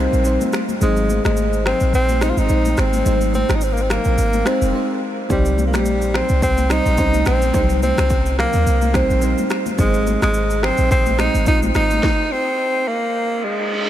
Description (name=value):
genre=afrobeats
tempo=107 BPM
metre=4/4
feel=swing 55% on 16ths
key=Ab major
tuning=A4 = 440 Hz
part: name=breathy tenor saxophone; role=melody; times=0.0-13.9 s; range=G3 to F4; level=-20 LUFS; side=equal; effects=ping-pong delay
part: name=bell-like FM electric piano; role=accompaniment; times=0.0-12.1 s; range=G3 to C5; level=-24 LUFS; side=right 1 dB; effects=chorus
part: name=clean 808-style bass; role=bass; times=0.0-12.0 s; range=F1 to Eb2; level=-19 LUFS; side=equal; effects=none
part: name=afro-pop drum kit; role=drums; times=0.1-12.2 s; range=finger snaps, kick drum, rim click, shaker, snare drum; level=-24 LUFS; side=equal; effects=overdrive
part: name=congas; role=percussion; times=0.4-12.0 s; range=none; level=-28 LUFS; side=left 6 dB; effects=none
part: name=reverse cymbal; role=sound effects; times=13.3-13.9 s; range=none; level=-24 LUFS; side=right 3 dB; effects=none
room=light reverb, digital ambience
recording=none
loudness=-15 LUFS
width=side -12 dB against mid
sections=0.0-13.9 A section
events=break 0.0-5.3; stop 12.0-13.9; reverse cymbal 13.3-13.9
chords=0.0 Cm; 0.8 Ab; 5.3 Cm; 9.8 Ab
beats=0.25 | 0.81 1.38 1.94 2.50 | 3.06 3.62 4.18 4.74 | 5.30 5.86 6.42 6.98 | 7.54 8.11 8.66 9.23 | 9.79 10.35 10.91 11.47 | 12.03 12.59 13.15 13.71